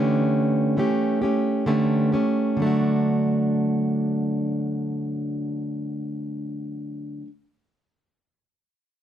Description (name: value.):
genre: pop.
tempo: 64-70 BPM.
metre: 4/4.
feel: straight.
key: D major.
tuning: A4 = 439 Hz.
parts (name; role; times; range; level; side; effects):
fingerpicked plugged-in steel-string acoustic guitar; solo; 0.0-7.3 s; D3 to G4; -21 LUFS; equal; none.
room: light reverb.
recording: none.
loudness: -21 LUFS.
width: side -10 dB against mid.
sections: 0.0-2.6 A section; 2.6-6.4 B section.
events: slowing down 0.0-2.6.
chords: 0.0 A7/D; 2.6 D.